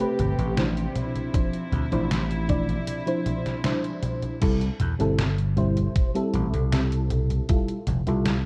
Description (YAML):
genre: vaporwave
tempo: 78 BPM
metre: 4/4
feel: straight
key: unclear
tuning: A4 = 440 Hz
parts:
  - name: mellow FM electric piano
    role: accompaniment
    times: 0.0-8.4 s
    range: F3 to D5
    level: -30 LUFS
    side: equal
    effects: ensemble chorus, tape echo
  - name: clear studio string section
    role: sustained chords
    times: 0.0-4.4 s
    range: C3 to G4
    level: -37 LUFS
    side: equal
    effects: none
  - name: detuned 8-bit digital drum machine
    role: drums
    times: 0.0-8.4 s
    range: congas, crash cymbal, hi-hat, snare drum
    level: -32 LUFS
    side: equal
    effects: studio reverb
  - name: vintage slap bass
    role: bass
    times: 0.2-8.5 s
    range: F1 to E2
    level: -27 LUFS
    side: equal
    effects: none
  - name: electronic kick drum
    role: drums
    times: 1.3-7.7 s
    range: none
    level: -26 LUFS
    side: equal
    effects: studio reverb
room: light reverb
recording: dark, warm production, cassette tape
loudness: -25 LUFS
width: mono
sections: 0.0-4.4 A section; 4.4-8.5 B section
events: break 2.9-4.4; band accent 3.6-4.0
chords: 0.0 Am9; 1.0 Dm9; 4.4 C6; 7.5 Fmaj9